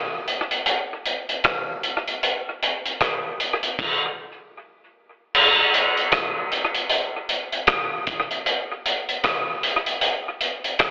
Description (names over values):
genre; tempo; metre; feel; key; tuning
reggae; 77 BPM; 4/4; swing 60% on 16ths; none; none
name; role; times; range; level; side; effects
crunchy breakbeat drum kit; drums; 0.3-10.9 s; crash cymbal, hi-hat, kick drum, rim click; -20 LUFS; equal; tape echo
room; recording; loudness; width
moderate plate reverb, RT60 3.6 s; telephone sound; -20 LUFS; side -29 dB against mid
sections
0.0-5.3 A section; 5.3-10.9 B section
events
stop 3.8-5.3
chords
none